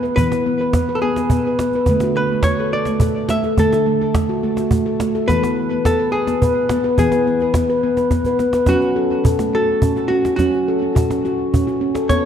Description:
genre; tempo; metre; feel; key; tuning
world meditative, meditative tuned percussion; 70 BPM (dotted quarters); 6/8; straight; F# minor; A4 = 441 Hz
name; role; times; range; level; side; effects
handpan; arpeggios; 0.0-12.3 s; D3 to B4; -17 LUFS; left 1 dB; diffuse ambient delay
cajon; percussion; 0.0-12.2 s; none; -20 LUFS; right 1 dB; none
archtop guitar, miked and amplified; melody; 0.2-12.3 s; F#4 to E5; -22 LUFS; equal; diffuse ambient delay
room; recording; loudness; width
wet concert hall reverb, RT60 1.8 s, studio ambience; dark, warm production; -15 LUFS; side -8 dB against mid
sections
0.0-8.7 A section; 8.7-12.3 B section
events
drum fill 8.3-8.7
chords
0.0 E; 1.9 D; 5.3 E; 8.7 F#m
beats
| 0.17 1.02 | 1.88 2.73 | 3.58 4.43 | 5.29 6.14 | 6.99 7.84 | 8.69 9.54 | 10.39 11.25 | 12.10

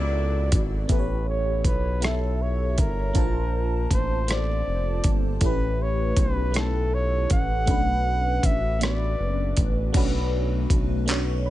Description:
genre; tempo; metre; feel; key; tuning
slow six-eight R&B; 53 BPM (dotted quarters); 6/8; straight; unclear; A4 = 440 Hz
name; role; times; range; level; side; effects
warm flugelhorn; melody; 0.0-9.6 s; A4 to F#5; -30 LUFS; equal; ping-pong delay
FM electric piano with soft pad layer; accompaniment; 0.0-11.5 s; A3 to B5; -29 LUFS; equal; chorus, phaser
bright studio string section; sustained chords; 0.0-0.9 s; F#3 to E4; -40 LUFS; left 3 dB; none
smooth synth bass; bass; 0.0-11.5 s; F1 to C#2; -25 LUFS; equal; none
dusty soul sampler-style drum kit; drums; 0.5-11.3 s; crash cymbal, handclaps, hi-hat, kick drum, rim click; -24 LUFS; equal; overdrive
room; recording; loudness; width
digital ambience; nothing above 11.0 kHz; -21 LUFS; side -15 dB against mid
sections
0.9-9.9 A section; 9.9-11.5 B section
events
none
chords
0.0 D69; 0.9 A9; 3.2 Bbmaj7; 5.4 A9; 7.7 Bm9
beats
| 0.89 2.02 | 3.15 4.29 | 5.42 6.55 | 7.68 8.81 | 9.95 11.08

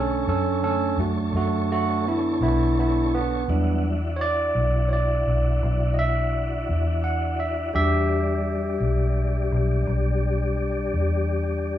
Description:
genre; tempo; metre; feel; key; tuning
slow blues; 56 BPM (dotted quarters); 12/8; straight; unclear; A4 = 439 Hz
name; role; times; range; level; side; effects
barky tine electric piano; accompaniment; 0.0-9.8 s; D3 to F#5; -24 LUFS; right 2 dB; none
tonewheel organ; sustained chords; 0.0-11.8 s; D3 to C#5; -29 LUFS; left 3 dB; slow rotary speaker, chorus vibrato
vintage muted fingered electric bass; bass; 0.0-11.8 s; B1 to F#2; -24 LUFS; equal; none
room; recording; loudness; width
light reverb; rough home demo mix, studio reverb; -21 LUFS; side -12 dB against mid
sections
0.0-11.8 A section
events
tine electric piano solo 0.0-11.8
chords
0.0 Bm9; 3.5 Em9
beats
0.28 1.34 2.41 | 3.48 4.55 5.61 6.68 | 7.75 8.81 9.88 10.94

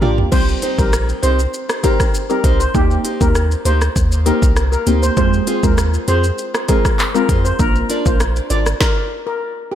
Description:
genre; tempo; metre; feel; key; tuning
dancehall; 99 BPM; 4/4; straight; C minor; A4 = 439 Hz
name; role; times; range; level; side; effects
steel pan; melody; 0.0-9.8 s; G4 to D5; -22 LUFS; left 2 dB; tape echo
deep mellow chord stab; accompaniment; 0.0-8.2 s; G3 to Bb4; -21 LUFS; equal; chorus, phaser
nylon-string guitar; arpeggios; 0.0-8.7 s; Bb3 to D5; -24 LUFS; right 1 dB; tape echo
punchy sub bass; bass; 0.0-8.7 s; Ab1 to F2; -17 LUFS; equal; none
deep house drum kit; drums; 0.0-9.0 s; crash cymbal, handclaps, hi-hat, kick drum, rim click, shaker, snare drum, toms; -17 LUFS; equal; none
room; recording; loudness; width
moderate plate reverb, RT60 1.8 s, digital ambience; dreamy mix soaked in reverb; -14 LUFS; side -10 dB against mid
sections
0.3-9.8 A section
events
drum fill 0.0-0.3; stop 8.8-9.8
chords
0.3 Cm; 2.7 Eb6; 5.2 Fm; 7.6 Bb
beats
| 0.32 0.93 1.54 2.14 | 2.75 3.35 3.96 4.57 | 5.17 5.78 6.38 6.99 | 7.60 8.20 8.81 9.41

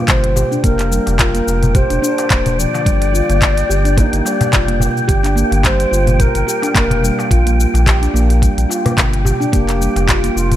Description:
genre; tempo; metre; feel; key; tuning
organic downtempo; 108 BPM; 4/4; swing 55% on 16ths; G minor; A4 = 438 Hz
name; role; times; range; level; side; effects
handpan; arpeggios; 0.0-10.4 s; D3 to G4; -19 LUFS; right 2 dB; digital delay, shimmer reverb
wind-like tuned noise texture; texture; 0.0-10.6 s; G5; -24 LUFS; right 1 dB; built-in reverb, shimmer reverb
breathy mellow low Native American-style wooden flute; melody; 0.1-10.6 s; Eb4 to D5; -21 LUFS; left 2 dB; digital delay, shimmer reverb
warm sub bass; bass; 0.1-10.6 s; Eb1 to Bb1; -16 LUFS; equal; sidechain pumping
electronic kick drum; drums; 0.1-10.2 s; none; -16 LUFS; equal; none
organic electronic drum kit; drums; 0.1-10.6 s; cabasa, handclaps, hi-hat; -20 LUFS; left 1 dB; none
darbuka; percussion; 0.4-10.6 s; none; -22 LUFS; left 2 dB; none
room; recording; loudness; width
light reverb, digital ambience; none; -12 LUFS; side -12 dB against mid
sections
0.0-10.6 A section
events
none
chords
0.0 Bb69 (rootless); 0.6 F7sus4; 2.9 Gm7; 7.3 Bb5; 9.5 Fsus4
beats
0.09 | 0.64 1.20 1.75 2.31 | 2.86 3.42 3.97 4.53 | 5.08 5.64 6.20 6.75 | 7.31 7.86 8.42 8.97 | 9.53 10.09

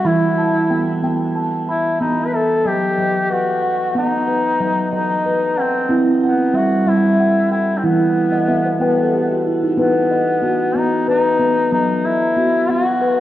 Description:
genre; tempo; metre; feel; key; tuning
world meditative, meditative tuned percussion; 62 BPM (dotted quarters); 6/8; straight; B phrygian dominant; A4 = 440 Hz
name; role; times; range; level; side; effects
clear duduk; melody; 0.0-13.2 s; B3 to B4; -19 LUFS; left 1 dB; shimmer reverb, diffuse ambient delay
steel tongue drum; arpeggios; 0.0-13.2 s; E3 to B5; -16 LUFS; equal; shimmer reverb
room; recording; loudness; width
wet recital hall reverb, RT60 1.5 s, small room ambience; worn, warbling old tape, cassette tape, warbly pitch drift; -15 LUFS; side -13 dB against mid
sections
0.0-9.8 A section; 9.8-13.2 B section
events
steel tongue drum fill 8.3-9.8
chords
0.1 Em; 2.0 B; 5.9 C; 7.8 Em; 9.8 B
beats
| 0.06 1.04 | 2.01 2.98 | 3.95 4.93 | 5.90 6.87 | 7.84 8.81 | 9.78 10.75 | 11.72 12.69

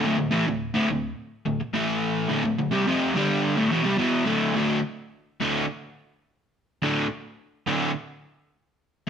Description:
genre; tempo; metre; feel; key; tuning
rock; 106 BPM; 4/4; straight; D minor; A4 = 440 Hz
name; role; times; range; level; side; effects
crunchy overdriven guitar; solo; 0.0-9.1 s; D2 to A3; -22 LUFS; equal; none
room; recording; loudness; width
moderate stone room reverb, RT60 1.0 s; band playing live in one room; -22 LUFS; side -7 dB against mid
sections
0.0-4.6 A section; 4.6-9.1 B section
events
none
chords
0.0 D5; 1.7 A5; 2.3 Dm; 4.6 D5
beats
| 0.05 0.61 1.18 1.74 | 2.30 2.87 3.43 4.00 | 4.56 5.13 5.69 6.26 | 6.83 7.39 7.96 8.53 | 9.09

